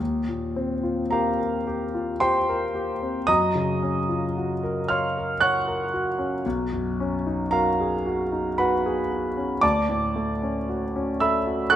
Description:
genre	classical, impressionist solo piano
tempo	56 BPM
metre	3/4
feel	uneven beats, rubato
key	unclear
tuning	A4 = 439 Hz
part	warm concert grand piano	solo	0.0-11.8 s	B1 to Gb6	-22 LUFS	equal	none
room	moderate concert hall reverb, RT60 2.5 s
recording	close, detailed microphones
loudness	-22 LUFS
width	side -11 dB against mid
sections	0.0-11.8 A section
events	none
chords	0.0 Eb69; 3.3 Gbmaj7; 6.4 B69; 9.6 Dmaj7

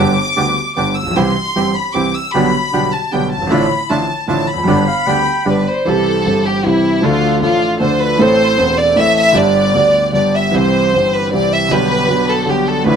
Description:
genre	tango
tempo	154 BPM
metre	3/4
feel	rubato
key	C major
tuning	A4 = 440 Hz
part	warm chamber violin section	second line	0.0-13.0 s	E4 to E6	-15 LUFS	left 1 dB	none
part	warm concert grand piano	accompaniment	0.0-13.0 s	E1 to A4	-15 LUFS	right 1 dB	none
part	bandoneon	stabs	0.0-13.0 s	A2 to A4	-23 LUFS	right 3 dB	none
part	warm clarinet	second line	4.9-5.9 s	D5 to G5	-21 LUFS	right 2 dB	slapback echo
room	moderate studio reverb, RT60 0.8 s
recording	close, detailed microphones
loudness	-12 LUFS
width	side -7 dB against mid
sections	0.0-5.9 A section; 5.9-13.0 A section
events	violin section solo 0.0-5.9, 5.9-13.0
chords	0.0 G; 1.2 C; 2.3 G/B; 3.5 Dmadd9/A; 4.7 G; 5.9 C; 7.0 Dm; 8.2 Am; 9.4 G; 10.5 C; 11.7 G/B

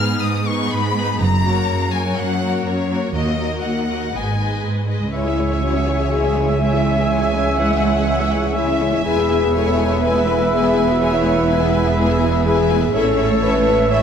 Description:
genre	cinematic, heroic adventure film score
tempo	123 BPM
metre	4/4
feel	straight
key	G# minor, C# minor from 5.1 s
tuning	A4 = 440 Hz
part	rich chamber violin section	melody	0.0-14.0 s	C#5 to E#6	-26 LUFS	left 4 dB	none
part	warm symphonic violin section	second line	0.0-14.0 s	G#4 to G#5	-28 LUFS	left 4 dB	none
part	warm symphonic viola section	accompaniment	0.0-14.0 s	G#3 to G#4	-25 LUFS	equal	none
part	mellow French horn section	sustained chords	0.0-14.0 s	G#3 to C#5	-22 LUFS	left 3 dB	none
part	rich symphonic cello section	bass	0.0-14.0 s	C#2 to A2	-22 LUFS	right 2 dB	none
part	rich symphonic double bass section	bass	1.2-14.0 s	E1 to D#2	-23 LUFS	right 2 dB	none
part	concert flute	second line	5.1-14.0 s	G#5 to B5	-29 LUFS	left 2 dB	none
part	mellow clarinet	second line	5.1-14.0 s	B4 to C#5	-30 LUFS	left 1 dB	none
part	warm oboe	second line	5.1-14.0 s	E5	-28 LUFS	right 1 dB	none
part	clear trombone section	sustained chords	5.1-14.0 s	E3 to C#4	-29 LUFS	right 3 dB	none
part	warm trumpet	stabs	5.1-14.0 s	E5	-24 LUFS	right 4 dB	none
room	wet concert hall reverb, RT60 2.1 s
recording	none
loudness	-16 LUFS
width	side -7 dB against mid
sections	0.0-5.1 A section; 5.1-14.0 B section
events	none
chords	0.0 G#m; 1.2 F#; 3.1 D#m; 4.1 G#m; 5.1 C#m; 9.1 E; 12.9 A

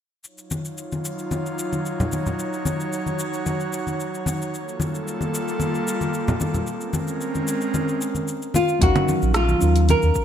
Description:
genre	sunset chillout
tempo	112 BPM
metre	4/4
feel	straight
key	unclear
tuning	A4 = 440 Hz
part	airy breathy pad	sustained chords	0.2-8.8 s	Gb3 to Db5	-26 LUFS	right 1 dB	chorus
part	deep house drum kit	drums	0.2-10.2 s	congas, hi-hat, rim click, shaker	-30 LUFS	right 1 dB	none
part	congas	percussion	0.5-10.0 s	none	-26 LUFS	left 2 dB	none
part	nylon-string guitar	melody	8.6-10.2 s	F4 to Bb4	-20 LUFS	left 1 dB	wide subtle chorus
part	mellow FM electric piano	accompaniment	8.8-10.2 s	Gb3 to F5	-24 LUFS	moving between left 5 dB and right 1 dB	chorus, phaser, auto-pan, cassette tape
part	warm sub bass	bass	8.8-10.1 s	Bb1 to Eb2	-18 LUFS	right 1 dB	none
part	electronic kick drum	drums	8.8-10.2 s	none	-23 LUFS	right 1 dB	none
room	light reverb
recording	bright 1980s-style digital production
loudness	-21 LUFS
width	side -9 dB against mid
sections	0.2-8.8 A section; 8.8-10.2 B section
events	none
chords	0.2 Ebm9; 4.5 Gm9; 6.7 Bbm9; 8.8 Ebm9

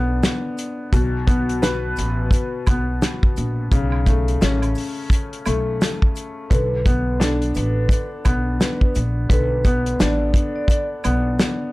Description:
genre	hip hop, boom-bap hip-hop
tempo	86 BPM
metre	4/4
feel	swing 59% on 16ths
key	B minor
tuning	A4 = 440 Hz
part	warm upright piano	accompaniment	0.0-11.7 s	B2 to B4	-24 LUFS	left 2 dB	high-pass filter, low-pass filter
part	upright bass	bass	0.0-11.4 s	A1 to B1	-22 LUFS	equal	none
part	warm soul drum kit	drums	0.2-11.6 s	hi-hat, kick drum, snare drum	-19 LUFS	equal	none
part	maracas and woodblock	percussion	0.2-11.6 s	none	-36 LUFS	right 6 dB	none
part	vibraphone with soft mallets	melody	6.5-10.9 s	A4 to D5	-27 LUFS	right 1 dB	high-pass filter, low-pass filter, tape echo
room	light reverb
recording	dark, warm production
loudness	-18 LUFS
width	side -20 dB against mid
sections	0.0-11.7 A section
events	none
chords	0.0 Bm; 0.9 N.C.; 3.7 A; 6.5 Bm

